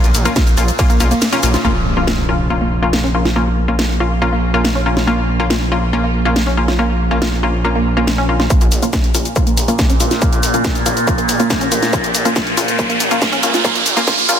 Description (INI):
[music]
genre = driving peak-time techno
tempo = 140 BPM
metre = 4/4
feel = straight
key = Bb minor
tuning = A4 = 441 Hz
[part]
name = wavetable chord stab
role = stabs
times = 0.0-14.4 s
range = Bb3 to F4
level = -20 LUFS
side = left 3 dB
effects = sidechain pumping, tape echo
[part]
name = gritty driven synth bass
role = bass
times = 0.0-14.4 s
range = Ab1 to Cb2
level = -18 LUFS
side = equal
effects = sidechain pumping, high-pass filter
[part]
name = overtone-sweeping drone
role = drone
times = 0.1-1.7, 9.2-14.4 s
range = Bb2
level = -22 LUFS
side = equal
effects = chorus, built-in reverb, sidechain pumping
[part]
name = techno drum kit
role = drums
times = 0.0-14.4 s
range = hi-hat, ride cymbal, shaker, snare drum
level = -20 LUFS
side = equal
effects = none
[part]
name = analog pluck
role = riff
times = 0.3-14.3 s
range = Bb3 to F4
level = -21 LUFS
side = right 2 dB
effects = chorus, cassette tape, sidechain pumping, tape echo
[part]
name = electronic kick drum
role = drums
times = 0.4-0.9, 8.5-14.2 s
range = none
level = -16 LUFS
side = equal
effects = distortion
[part]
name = impact and riser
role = sound effects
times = 1.6-3.4, 10.8-14.4 s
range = none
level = -20 LUFS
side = right 2 dB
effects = none
[sound]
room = light reverb, digital ambience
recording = dense, heavily limited modern master, high-pass filter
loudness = -13 LUFS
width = side -8 dB against mid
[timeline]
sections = 0.0-1.6 A section; 1.6-8.5 B section; 8.5-14.4 C section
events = drop 0.0-1.6; kick drops out 1.2-1.6; band accent 1.2; impact 1.6-3.4; filter sweep on synth arpeggio sound 1.6-8.5, 8.5-14.4; build-up 8.5-14.4; filter sweep on synth stab 8.5-14.4; filter sweep 8.5-14.4; riser 10.8-14.4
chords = 0.0 Bbm